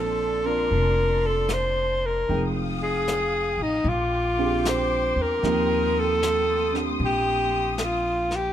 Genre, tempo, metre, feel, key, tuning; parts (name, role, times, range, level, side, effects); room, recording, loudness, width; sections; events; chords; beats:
jazz ballad; 76 BPM; 4/4; swing 66% on 8ths; Bb major; A4 = 440 Hz
breathy alto saxophone; melody; 0.0-8.5 s; Eb4 to C5; -24 LUFS; equal
warm upright piano; accompaniment; 0.0-8.5 s; F3 to G5; -30 LUFS; right 4 dB
muted studio string section; sustained chords; 0.0-8.5 s; Bb3 to Eb6; -32 LUFS; left 3 dB
upright bass; bass; 0.0-8.5 s; F1 to E2; -29 LUFS; left 1 dB
vintage brush drum kit; drums; 0.7-8.5 s; brushed snare drum, hi-hat, snare drum; -34 LUFS; left 2 dB
light reverb; minimal, uncompressed stereo recording; -21 LUFS; side -10 dB against mid
0.0-8.5 A section
0.0 Bbmaj9; 2.3 Fm9; 3.9 Bb13; 5.4 Eb6
0.72 1.50 | 2.29 3.08 3.86 4.65 | 5.43 6.21 7.00 7.78